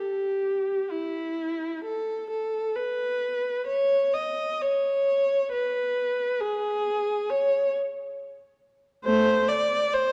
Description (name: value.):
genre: classical, free, expressive piece for unaccompanied viola.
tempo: 66 BPM.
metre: 3/4.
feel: uneven beats, rubato.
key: unclear.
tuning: A4 = 440 Hz.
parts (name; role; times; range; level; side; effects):
warm viola; solo; 0.0-10.1 s; A3 to Eb5; -26 LUFS; equal; none.
room: moderate concert hall reverb, RT60 2.0 s.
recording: dark, warm production.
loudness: -26 LUFS.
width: mono.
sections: 0.0-10.1 A section.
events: none.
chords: none.